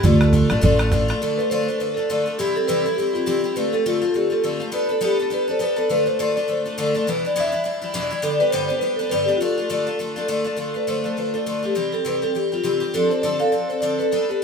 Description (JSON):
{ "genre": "celtic folk, Celtic reel", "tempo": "204 BPM", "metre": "4/4", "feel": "swing 58% on 8ths", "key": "D dorian", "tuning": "A4 = 444 Hz", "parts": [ { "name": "marimba with soft mallets", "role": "melody", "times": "0.0-14.4 s", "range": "F4 to F5", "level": "-22 LUFS", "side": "left 1 dB", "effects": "none" }, { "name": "picked twelve-string acoustic guitar", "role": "accompaniment", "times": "0.0-14.4 s", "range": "E2 to A4", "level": "-22 LUFS", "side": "left 2 dB", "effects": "none" }, { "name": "upright bass", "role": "bass", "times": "0.0-1.1 s", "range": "A1 to D2", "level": "-17 LUFS", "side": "right 1 dB", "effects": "none" }, { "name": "bodhran", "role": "percussion", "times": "0.0-1.2 s", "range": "none", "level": "-21 LUFS", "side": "right 2 dB", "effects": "none" } ], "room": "light reverb", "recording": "minimal, uncompressed stereo recording", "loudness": "-19 LUFS", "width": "side -6 dB against mid", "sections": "0.0-1.2 A section; 1.2-10.6 B section; 10.6-14.4 B section", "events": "none", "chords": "0.0 Dm; 2.4 C; 3.5 Dm7; 4.7 Gadd9; 5.9 Dm; 7.1 Em7; 8.2 G; 9.4 Dm; 11.8 C; 12.9 Dm7", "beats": "| 0.04 0.33 0.63 0.92 | 1.21 1.50 1.79 2.09 | 2.38 2.67 2.96 3.26 | 3.55 3.84 4.14 4.43 | 4.72 5.01 5.31 5.60 | 5.89 6.19 6.48 6.77 | 7.07 7.36 7.65 7.95 | 8.24 8.53 8.83 9.12 | 9.41 9.71 10.00 10.30 | 10.59 10.88 11.18 11.47 | 11.77 12.06 12.36 12.65 | 12.95 13.24 13.54 13.84 | 14.13 14.43" }